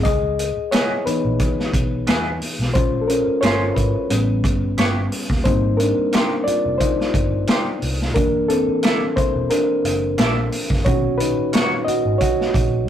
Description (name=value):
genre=lush 1970s-style soul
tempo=89 BPM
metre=4/4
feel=swing 54% on 16ths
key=unclear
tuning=A4 = 440 Hz
part: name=reed electric piano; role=accompaniment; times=0.0-12.9 s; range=A#2 to D#5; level=-20 LUFS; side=left 1 dB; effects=none
part: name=vintage muted fingered electric bass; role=bass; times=0.0-12.9 s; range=E1 to E2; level=-24 LUFS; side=equal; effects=none
part: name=vintage drum kit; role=drums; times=0.0-12.7 s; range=hi-hat, kick drum, snare drum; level=-21 LUFS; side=equal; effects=none
part: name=clean electric guitar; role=riff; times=0.7-11.7 s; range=G#3 to D#5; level=-24 LUFS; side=right 2 dB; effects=tremolo
room=moderate small room reverb, RT60 0.6 s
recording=rough rehearsal-room recording, warm saturation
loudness=-17 LUFS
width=side -10 dB against mid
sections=0.0-12.9 A section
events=reed electric piano solo 0.0-12.9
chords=0.1 C#m9; 2.8 A#m9; 4.1 A9; 5.5 G#maj9; 8.2 F#7alt; 10.9 Bmaj9